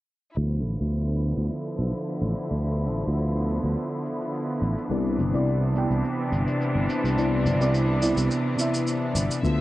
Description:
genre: sunset chillout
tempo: 106 BPM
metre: 4/4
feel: swing 53% on 16ths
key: D dorian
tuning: A4 = 440 Hz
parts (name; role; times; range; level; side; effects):
- clear studio string section; sustained chords; 0.4-9.6 s; C3 to E5; -28 LUFS; equal; cassette tape
- sustaining fretless electric bass; bass; 0.4-9.6 s; G1 to D2; -25 LUFS; equal; tube saturation
- shaker; drums; 0.4-9.6 s; none; -35 LUFS; equal; low-pass filter on perc, low-pass filter on room
- mellow FM electric piano; accompaniment; 4.9-9.6 s; C3 to G5; -25 LUFS; moving between left 4 dB and right 3 dB; chorus, auto-pan, cassette tape, tape echo
- electronic kick drum; drums; 9.4-9.6 s; none; -27 LUFS; equal; none
room: moderate studio reverb, RT60 0.6 s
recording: home recording on cassette, low-pass filter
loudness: -23 LUFS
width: side -16 dB against mid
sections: 0.4-9.4 A section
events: filter sweep on drum 0.4-9.4; filter sweep on fretless electric bass 0.4-9.4; filter sweep 0.4-9.4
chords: 0.4 Dm69; 4.9 Cmaj9

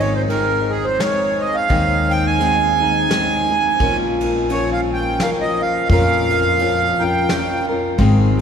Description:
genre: folk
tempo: 86 BPM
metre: 3/4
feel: swing 58% on 8ths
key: Bb dorian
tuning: A4 = 440 Hz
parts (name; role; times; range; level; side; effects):
- accordion; melody; 0.0-7.7 s; Ab4 to Ab5; -18 LUFS; right 3 dB; none
- picked steel-string acoustic guitar; accompaniment; 0.0-8.4 s; Ab2 to Bb4; -20 LUFS; left 2 dB; none
- upright bass; bass; 0.0-8.4 s; Ab1 to F2; -22 LUFS; equal; none
- soft brush drum kit; drums; 0.0-8.4 s; kick drum, ride cymbal, snare drum; -26 LUFS; equal; none
room: wet cathedral reverb, RT60 6.5 s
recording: recorded in a church or concert hall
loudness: -15 LUFS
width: side -7 dB against mid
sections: 0.0-8.4 A section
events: accordion solo 0.0-8.4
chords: 0.0 Ab; 3.8 Bbm

